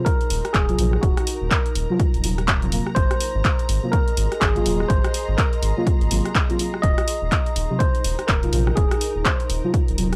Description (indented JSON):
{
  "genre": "deep house",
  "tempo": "124 BPM",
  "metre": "4/4",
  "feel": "swing 60% on 16ths",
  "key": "Eb dorian",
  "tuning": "A4 = 440 Hz",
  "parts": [
    { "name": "tine electric piano", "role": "melody", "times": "0.0-9.7 s", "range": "Gb4 to Eb5", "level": "-29 LUFS", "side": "equal", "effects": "tape echo" },
    { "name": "deep mellow chord stab", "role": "stabs", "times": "0.0-10.1 s", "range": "C3 to F4", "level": "-28 LUFS", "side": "equal", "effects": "chorus, phaser, sidechain pumping, tape echo" },
    { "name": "granular cloud pad", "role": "texture", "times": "0.0-10.2 s", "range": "Eb4 to C6", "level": "-37 LUFS", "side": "equal", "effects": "built-in reverb, sidechain pumping" },
    { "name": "warm symphonic violin section", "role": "texture", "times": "0.0-10.2 s", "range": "Bb5", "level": "-43 LUFS", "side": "equal", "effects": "none" },
    { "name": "electronic kick drum", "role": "drums", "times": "0.1-9.9 s", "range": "none", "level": "-24 LUFS", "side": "equal", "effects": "none" },
    { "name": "punchy analog drum machine", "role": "drums", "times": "0.1-10.2 s", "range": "handclaps, hi-hat, rim click", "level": "-28 LUFS", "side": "equal", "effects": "none" },
    { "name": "round analog bass", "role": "bass", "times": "0.3-10.2 s", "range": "Eb1 to Bb1", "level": "-26 LUFS", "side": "equal", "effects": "tube saturation, sidechain pumping" }
  ],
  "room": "little or no reverb",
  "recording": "dry, gritty hardware recording, transformer saturation",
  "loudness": "-21 LUFS",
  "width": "mono",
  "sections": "0.0-10.2 A section",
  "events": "filter sweep on synth stab 0.0-10.2",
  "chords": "0.0 Ebm69",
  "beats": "0.06 0.55 | 1.03 1.51 2.00 2.48 | 2.96 3.45 3.93 4.42 | 4.90 5.38 5.87 6.35 | 6.83 7.32 7.80 8.29 | 8.77 9.26 9.74"
}